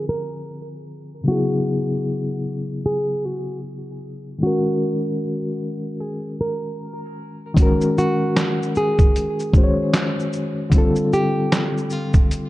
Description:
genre	lo-fi hip hop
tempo	76 BPM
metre	4/4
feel	swing 62% on 16ths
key	G# minor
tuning	A4 = 440 Hz
part	flamenco guitar	melody	0.0-12.5 s	E#4 to Bb4	-25 LUFS	right 1 dB	low-pass filter, tape echo
part	bright reed electric piano	accompaniment	0.0-12.5 s	C#3 to C#5	-22 LUFS	left 1 dB	fast tremolo, low-pass filter
part	trip hop sampler-style drum kit	drums	7.6-12.5 s	handclaps, hi-hat, kick drum, shaker, snare drum	-17 LUFS	equal	none
room	light reverb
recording	dark, warm production, low-pass filter, nothing above 11.0 kHz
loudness	-18 LUFS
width	side -16 dB against mid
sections	0.0-7.6 A section; 7.6-12.5 B section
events	filter sweep 0.0-7.6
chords	0.0 Gm7 (rootless); 1.2 F#sus2; 4.4 D#m7; 7.6 G#sus2; 10.7 Gsus2

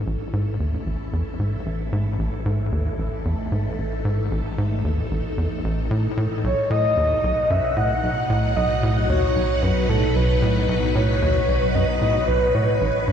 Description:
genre	ambient, sequencer-driven space music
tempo	113 BPM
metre	4/4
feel	straight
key	B mixolydian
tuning	A4 = 440 Hz
part	phased string machine	sustained chords	0.0-13.1 s	A2 to F#5	-26 LUFS	equal	ensemble chorus, phaser, shimmer reverb
part	tight sequencer bass	riff	0.0-13.1 s	A1 to A2	-23 LUFS	equal	ping-pong delay
part	warm sub bass	bass	0.0-13.1 s	A1 to B1	-30 LUFS	equal	none
part	breathy flute-like synth lead	melody	6.4-13.1 s	A4 to F#5	-22 LUFS	equal	analog chorus, shimmer reverb, ping-pong delay
room	wet cathedral reverb, RT60 5.6 s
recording	in a vast, echoing space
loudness	-19 LUFS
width	side -8 dB against mid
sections	0.0-13.1 A section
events	fade-in on string machine 0.0-13.1; fade-in on sub bass 0.0-13.1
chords	0.0 A; 6.4 B

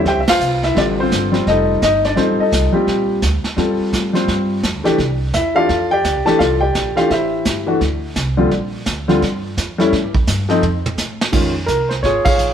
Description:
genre	jazz piano trio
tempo	170 BPM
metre	4/4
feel	swing 62% on 8ths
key	D minor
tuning	A4 = 440 Hz
part	warm baby grand piano	melody	0.0-12.5 s	D3 to A5	-16 LUFS	left 1 dB	none
part	upright bass	bass	0.0-12.5 s	F1 to A2	-22 LUFS	right 1 dB	none
part	vintage brush drum kit	drums	0.1-12.5 s	brushed snare drum, crash cymbal, hi-hat, kick drum, ride cymbal, snare drum, toms	-21 LUFS	right 2 dB	none
room	moderate stone room reverb, RT60 1.4 s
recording	band playing live in one room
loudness	-14 LUFS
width	side -8 dB against mid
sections	0.1-11.3 A section; 11.3-12.5 B section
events	band accent 0.2, 12.2; drum fill 10.6-11.3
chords	0.1 Dm11; 1.5 F7; 2.9 Bbmaj7; 4.3 Gm7; 5.0 C; 5.7 F6; 7.1 Am7; 7.8 Cadd9; 8.5 Gm7; 9.9 A5; 10.6 F; 11.3 Bbm9

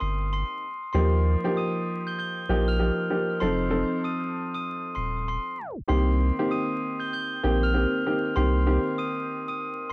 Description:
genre	hip hop, boom-bap hip-hop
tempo	97 BPM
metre	4/4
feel	swing 62% on 16ths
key	C dorian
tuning	A4 = 440 Hz
part	glockenspiel with hard plastic mallets	melody	0.0-9.9 s	C6 to G7	-31 LUFS	equal	high-pass filter, low-pass filter, cassette tape
part	clear upright piano	accompaniment	0.0-9.9 s	Eb3 to A4	-27 LUFS	equal	cassette tape, high-pass filter, low-pass filter
part	warm sub bass	bass	0.0-8.8 s	Eb1 to Eb2	-24 LUFS	equal	none
room	moderate booth ambience, RT60 0.2 s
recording	home recording on cassette, vinyl crackle, tape stop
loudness	-23 LUFS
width	side -24 dB against mid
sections	0.0-5.9 A section; 5.9-9.9 B section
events	tape stop 5.6-5.9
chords	0.0 Cm7; 0.9 Ebadd9; 3.4 F7; 5.9 Cm7

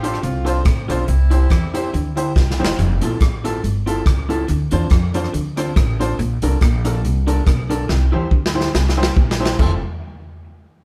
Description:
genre	ska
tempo	141 BPM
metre	4/4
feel	swing 55% on 8ths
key	F major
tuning	A4 = 440 Hz
part	warm horn section	melody	0.0-2.4 s	G3 to G4	-32 LUFS	equal	none
part	electric guitar through a small old amp	accompaniment	0.0-9.7 s	C4 to C5	-28 LUFS	equal	none
part	bright upright piano	stabs	0.0-9.8 s	D4 to C5	-28 LUFS	equal	none
part	upright bass	bass	0.0-9.8 s	E1 to A2	-22 LUFS	equal	none
part	swinging big-band drum kit	drums	0.0-9.7 s	crash cymbal, hi-hat, kick drum, rim click, snare drum, toms	-21 LUFS	equal	none
part	semi-hollow electric guitar	riff	0.2-9.3 s	E2 to A3	-29 LUFS	equal	tape echo
room	light reverb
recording	band playing live in one room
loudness	-18 LUFS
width	mono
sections	0.0-2.8 A section; 2.8-9.6 B section; 9.6-10.8 C section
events	drum fill 2.4-2.8, 7.9-9.6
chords	0.0 Dm7; 1.1 C; 2.8 Fmaj7; 4.5 Dm7; 6.2 Bbmaj7; 7.9 C; 9.6 Fmaj7

